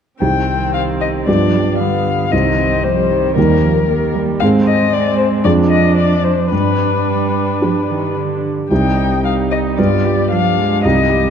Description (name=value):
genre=quick classical-period movement for piano quartet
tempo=113 BPM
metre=4/4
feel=rubato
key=C minor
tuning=A4 = 442 Hz
part: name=muted violin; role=melody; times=0.2-11.3 s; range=Bb4 to G5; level=-18 LUFS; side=left 7 dB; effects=none
part: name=muted cello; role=second line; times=0.2-11.3 s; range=D3 to Ab3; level=-20 LUFS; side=right 6 dB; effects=none
part: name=muted viola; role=accompaniment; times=0.2-11.3 s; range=G3 to G4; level=-23 LUFS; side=right 3 dB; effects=none
part: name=warm grand piano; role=accompaniment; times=0.2-11.3 s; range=C2 to Ab4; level=-16 LUFS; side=equal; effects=none
room=wet concert hall reverb, RT60 2.3 s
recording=dark, warm production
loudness=-12 LUFS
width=side -7 dB against mid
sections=0.2-11.3 A section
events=none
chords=0.2 Cm; 1.3 G7; 2.3 Cm; 3.4 Eb; 4.4 Ab; 5.4 Ddim/F; 6.5 G; 8.7 Cm; 9.8 G7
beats=| 0.21 0.74 1.27 1.80 | 2.32 2.85 3.37 3.89 | 4.41 4.93 5.44 5.97 | 6.52 7.07 7.61 8.16 | 8.70 9.24 9.78 10.31 | 10.84